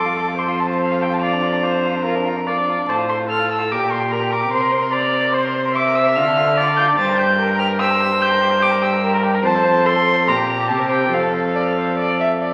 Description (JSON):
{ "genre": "quick classical-period movement for string quartet", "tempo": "145 BPM", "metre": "4/4", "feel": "straight", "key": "F major", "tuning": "A4 = 440 Hz", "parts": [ { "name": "warm violin", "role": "melody", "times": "0.0-12.5 s", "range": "F5 to A6", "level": "-24 LUFS", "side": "equal", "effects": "none" }, { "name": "warm violin", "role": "second line", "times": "0.0-12.5 s", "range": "D4 to E5", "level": "-26 LUFS", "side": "equal", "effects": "none" }, { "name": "rich viola", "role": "accompaniment", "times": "0.0-12.5 s", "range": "G4 to E5", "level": "-22 LUFS", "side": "equal", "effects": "none" }, { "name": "dark cello", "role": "bass", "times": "0.0-12.5 s", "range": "F2 to D3", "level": "-25 LUFS", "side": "equal", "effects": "none" } ], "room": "wet recital hall reverb, RT60 1.4 s", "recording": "very old 78 rpm record, vinyl crackle", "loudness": "-18 LUFS", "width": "mono", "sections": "0.0-12.5 A section", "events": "none", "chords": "0.0 F; 1.2 Bb/F; 2.9 F/A; 3.7 Gm/Bb; 4.5 C7; 6.2 Dm; 7.0 Gm; 9.4 F; 10.3 Gm/Bb; 10.7 C5; 11.1 F" }